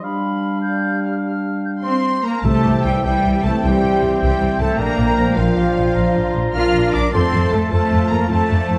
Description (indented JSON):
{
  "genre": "cinematic, heroic adventure film score",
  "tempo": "102 BPM (dotted quarters)",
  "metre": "12/8",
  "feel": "straight",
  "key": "C mixolydian",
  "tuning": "A4 = 440 Hz",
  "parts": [
    { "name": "dark clarinet", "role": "second line", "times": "0.0-8.8 s", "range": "D4 to E5", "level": "-29 LUFS", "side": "equal", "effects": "none" },
    { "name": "silver concert flute", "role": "second line", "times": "0.0-8.8 s", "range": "F5 to G6", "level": "-29 LUFS", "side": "equal", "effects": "none" },
    { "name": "warm oboe", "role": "second line", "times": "0.0-8.8 s", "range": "E5 to Bb5", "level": "-31 LUFS", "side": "equal", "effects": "none" },
    { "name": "mellow trombone section", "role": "sustained chords", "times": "0.0-8.8 s", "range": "E3 to D4", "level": "-28 LUFS", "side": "equal", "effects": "none" },
    { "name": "warm symphonic violin section", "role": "melody", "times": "1.8-8.8 s", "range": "F5 to F6", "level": "-32 LUFS", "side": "equal", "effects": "none" },
    { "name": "warm symphonic violin section", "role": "second line", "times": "1.8-8.8 s", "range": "F5 to F6", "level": "-34 LUFS", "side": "equal", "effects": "none" },
    { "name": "mellow French horn section", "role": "sustained chords", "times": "1.8-8.8 s", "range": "F3 to F4", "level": "-28 LUFS", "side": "equal", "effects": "none" },
    { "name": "dark trumpet section", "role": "stabs", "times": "1.8-8.8 s", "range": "F4 to F5", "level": "-28 LUFS", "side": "equal", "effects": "none" },
    { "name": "rich symphonic cello section", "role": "bass", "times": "1.8-8.8 s", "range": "F3 to F4", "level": "-23 LUFS", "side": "equal", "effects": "none" },
    { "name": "timpani", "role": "percussion", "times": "2.4-3.0 s", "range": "C3", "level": "-26 LUFS", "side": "equal", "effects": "none" },
    { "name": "warm symphonic viola section", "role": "accompaniment", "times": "2.5-8.8 s", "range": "C4 to A4", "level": "-31 LUFS", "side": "equal", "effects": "none" },
    { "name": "warm studio double bass section", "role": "bass", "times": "2.5-8.8 s", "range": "Bb1 to F2", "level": "-23 LUFS", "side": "equal", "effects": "none" }
  ],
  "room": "moderate scoring stage reverb, RT60 1.9 s",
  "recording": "dark, warm production",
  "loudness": "-18 LUFS",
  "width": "mono",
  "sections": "0.0-2.4 A section; 2.4-8.8 A section",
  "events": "none",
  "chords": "0.0 G7; 2.4 C; 4.8 Bb; 7.1 F",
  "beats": "| 0.02 0.63 1.24 1.84 | 2.44 3.04 3.63 4.21 | 4.79 5.37 5.96 6.54 | 7.13 7.71 8.29"
}